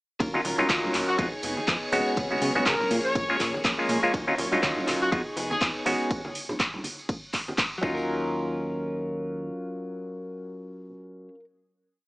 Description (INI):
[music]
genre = filtered disco house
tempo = 122 BPM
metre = 4/4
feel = swing 57% on 16ths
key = Eb minor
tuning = A4 = 440 Hz
[part]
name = phased string machine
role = sustained chords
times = 0.2-6.1 s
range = Db5 to Db6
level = -37 LUFS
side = equal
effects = ensemble chorus, phaser, sidechain pumping
[part]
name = direct-recorded clean electric guitar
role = riff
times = 0.2-11.4 s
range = F3 to Bb4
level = -32 LUFS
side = equal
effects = wide subtle chorus, sidechain pumping
[part]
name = plucky analog bass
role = bass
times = 0.2-9.5 s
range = Eb1 to Db3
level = -33 LUFS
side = equal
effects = sidechain pumping
[part]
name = electronic kick drum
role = drums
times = 0.2-7.9 s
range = none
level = -30 LUFS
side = equal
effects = none
[part]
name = house drum kit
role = drums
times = 0.2-7.7 s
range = handclaps, hi-hat, ride cymbal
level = -30 LUFS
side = equal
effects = sidechain pumping on cymbals, sidechain pumping on hats
[part]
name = tambourine and congas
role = percussion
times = 0.2-8.1 s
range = none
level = -37 LUFS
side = right 1 dB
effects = sidechain pumping on perc
[part]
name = auto-wah clav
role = accompaniment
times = 0.3-10.9 s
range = Gb3 to Gb4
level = -27 LUFS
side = equal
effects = phaser, sidechain pumping
[part]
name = bright horn section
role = melody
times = 1.1-5.6 s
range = Gb4 to Db5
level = -30 LUFS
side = equal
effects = vintage 12-bit sampler grit, sidechain pumping, dub echo
[sound]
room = light reverb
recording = small speaker sound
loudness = -24 LUFS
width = side -20 dB against mid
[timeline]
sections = 0.2-8.1 drop; 8.1-12.0 final hit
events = drop 0.2-8.1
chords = 0.2 Ebm9; 1.2 Fm7b5; 2.2 Db7sus4; 2.9 Bbm7; 4.1 Ebm9; 5.1 Fm7b5; 6.1 Db7sus4; 6.8 N.C.; 7.8 Ebm9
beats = | 0.20 0.69 1.19 1.68 | 2.17 2.66 3.15 3.65 | 4.14 4.63 5.12 5.61 | 6.11 6.60 7.09 7.58 | 8.07 8.56 9.06 9.55 | 10.04 10.53 11.02